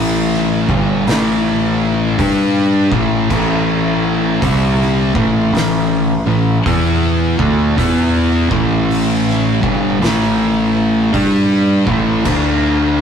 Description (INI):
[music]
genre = stoner and doom metal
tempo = 54 BPM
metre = 4/4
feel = swing 65% on 8ths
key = unclear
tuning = A4 = 443 Hz
[part]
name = sludgy distorted guitar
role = riff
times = 0.0-13.0 s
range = G2 to G4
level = -22 LUFS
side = left 1 dB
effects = overdrive
[part]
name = thick fuzz guitar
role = riff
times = 0.0-13.0 s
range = G2 to G4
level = -18 LUFS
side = left 5 dB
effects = distortion
[part]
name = thick fuzz guitar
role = riff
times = 0.0-13.0 s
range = G2 to G4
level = -18 LUFS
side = right 3 dB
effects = distortion
[part]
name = growling picked electric bass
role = bass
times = 0.0-13.0 s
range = G1 to G2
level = -18 LUFS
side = equal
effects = overdrive
[part]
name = oversized low-tuned drum kit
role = drums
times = 0.3-12.6 s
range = crash cymbal, hi-hat, kick drum, snare drum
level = -22 LUFS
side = right 1 dB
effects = none
[sound]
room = moderate small room ambience, RT60 0.5 s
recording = rough rehearsal-room recording, warm saturation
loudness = -12 LUFS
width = side -7 dB against mid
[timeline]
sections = 0.0-13.0 A section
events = none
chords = 0.0 A5; 12.3 D5